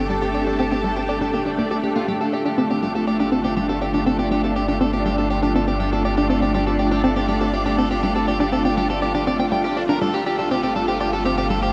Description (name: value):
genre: ambient, sequencer-driven space music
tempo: 121 BPM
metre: 4/4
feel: straight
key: unclear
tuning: A4 = 440 Hz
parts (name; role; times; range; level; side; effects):
- string machine, full ensemble; sustained chords; 0.0-11.7 s; A3 to D5; -24 LUFS; equal; ensemble chorus
- electric guitar at the edge of break-up; arpeggios; 0.0-11.7 s; G3 to G5; -28 LUFS; equal; delay
- hollow square pluck; riff; 0.0-11.7 s; G3 to D5; -26 LUFS; equal; chorus, delay
- round analog bass; bass; 0.0-11.7 s; G1; -31 LUFS; equal; tube saturation
room: wet huge ambient reverb, RT60 8.1 s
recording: dark, warm production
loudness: -21 LUFS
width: mono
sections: 0.0-11.7 A section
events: fade-in on clean electric guitar 0.0-11.7; filter sweep on synth arpeggio sound 0.0-11.7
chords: 0.0 Gsus2